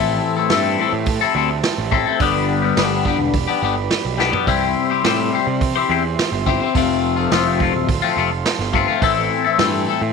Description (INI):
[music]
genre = psychedelic rock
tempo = 106 BPM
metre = 4/4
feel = straight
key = unclear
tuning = A4 = 440 Hz
[part]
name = overdriven combo organ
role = sustained chords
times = 0.0-10.1 s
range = G4 to C6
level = -27 LUFS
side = right 13 dB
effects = none
[part]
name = twangy electric guitar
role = riff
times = 0.0-10.1 s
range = F2 to C5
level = -18 LUFS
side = left 11 dB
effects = phaser
[part]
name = fuzz picked electric bass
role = bass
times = 0.0-10.1 s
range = D1 to C3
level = -24 LUFS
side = right 3 dB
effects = overdrive
[part]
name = vintage drum kit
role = drums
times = 0.5-9.7 s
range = hi-hat, kick drum, snare drum, toms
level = -23 LUFS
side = right 3 dB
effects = none
[sound]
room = light reverb, small room reverb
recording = 1960s-style stereo with parts hard left and right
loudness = -16 LUFS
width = side -5 dB against mid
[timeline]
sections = 0.0-10.1 A section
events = drum fill 4.2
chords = 0.0 Am7; 2.2 G; 4.5 C; 6.8 F; 9.0 Am7